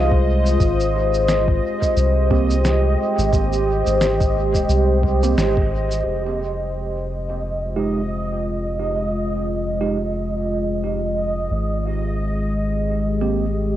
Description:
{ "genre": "ambient dub", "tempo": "88 BPM", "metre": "4/4", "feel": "swing 58% on 16ths", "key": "F minor", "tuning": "A4 = 440 Hz", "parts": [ { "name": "deep dark ambient pad", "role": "sustained chords", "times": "0.0-13.8 s", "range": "Ab3 to Eb5", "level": "-22 LUFS", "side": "left 1 dB", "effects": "chorus, built-in reverb, cassette tape" }, { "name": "soft dub sub bass", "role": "bass", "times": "0.0-13.8 s", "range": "Eb1 to C2", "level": "-22 LUFS", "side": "equal", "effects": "none" }, { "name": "bubbling stepped-filter texture", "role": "texture", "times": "0.0-13.8 s", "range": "Eb5", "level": "-28 LUFS", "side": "right 3 dB", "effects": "chorus, built-in reverb, cassette tape" }, { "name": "electronic kick drum", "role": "drums", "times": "0.1-5.7 s", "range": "none", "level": "-21 LUFS", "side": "equal", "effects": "overdrive, cassette tape" }, { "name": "electronic cabasa and snare drum", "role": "drums", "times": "0.5-6.0 s", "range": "none", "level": "-26 LUFS", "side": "equal", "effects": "overdrive, low-pass filter on perc, cassette tape, low-pass filter on snare, low-pass filter on room, dub echo" }, { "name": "bell-like tine electric piano", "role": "stabs", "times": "2.3-13.5 s", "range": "Ab3 to G4", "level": "-27 LUFS", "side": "right 6 dB", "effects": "low-pass filter, cassette tape, dub echo" } ], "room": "light reverb", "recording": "home recording on cassette", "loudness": "-18 LUFS", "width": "side -12 dB against mid", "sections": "0.0-6.1 A section; 6.1-13.8 B section", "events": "band accent 5.4-5.7", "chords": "0.0 Fm7; 0.6 Abmaj7; 6.1 Fm7; 11.5 Abmaj7", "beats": "| 0.60 1.28 1.97 2.65 | 3.33 4.01 4.69 5.38 | 6.06 6.74 7.42 8.10 | 8.79 9.47 10.15 10.83 | 11.51 12.19 12.88 13.56" }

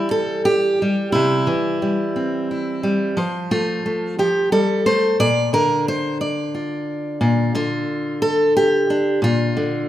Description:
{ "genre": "folk, solo fingerstyle acoustic guitar", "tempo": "59 BPM (dotted quarters)", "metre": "6/8", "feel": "straight", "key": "unclear", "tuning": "A4 = 443 Hz", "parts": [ { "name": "fingerpicked steel-string acoustic guitar", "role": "solo", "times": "0.0-9.9 s", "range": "Bb2 to D5", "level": "-17 LUFS", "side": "equal", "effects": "none" } ], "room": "moderate scoring stage reverb, RT60 1.9 s", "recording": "minimal, uncompressed stereo recording", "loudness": "-17 LUFS", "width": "side -12 dB against mid", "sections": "0.0-9.9 A section", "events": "none", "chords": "0.0 C; 3.2 F; 5.2 Bb", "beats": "0.13 | 1.14 2.16 | 3.18 4.19 | 5.20 6.20 | 7.21 8.21 | 9.23" }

